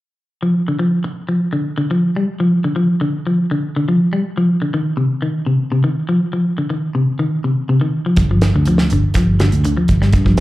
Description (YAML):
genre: afrobeat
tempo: 122 BPM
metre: 4/4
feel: straight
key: unclear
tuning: A4 = 439 Hz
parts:
  - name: clean electric guitar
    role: arpeggios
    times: 0.4-10.4 s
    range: C3 to G3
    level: -16 LUFS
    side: left 1 dB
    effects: plate reverb, slapback echo
  - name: fingered electric bass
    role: bass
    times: 8.2-10.4 s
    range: G1 to G2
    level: -15 LUFS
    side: right 1 dB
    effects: none
  - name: damped 70s drum kit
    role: drums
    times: 8.2-10.4 s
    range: hi-hat, kick drum, snare drum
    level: -17 LUFS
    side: right 1 dB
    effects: none
room: moderate club reverb, RT60 0.5 s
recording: live gig heard through the venue's PA, club reverb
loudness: -14 LUFS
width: side -17 dB against mid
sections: 0.3-10.4 A section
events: none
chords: 0.3 N.C.; 4.2 F5; 8.2 G5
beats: | 0.31 0.80 1.29 1.78 | 2.28 2.77 3.26 3.75 | 4.25 4.74 5.23 5.72 | 6.21 6.71 7.20 7.69 | 8.18 8.67 9.16 9.65 | 10.15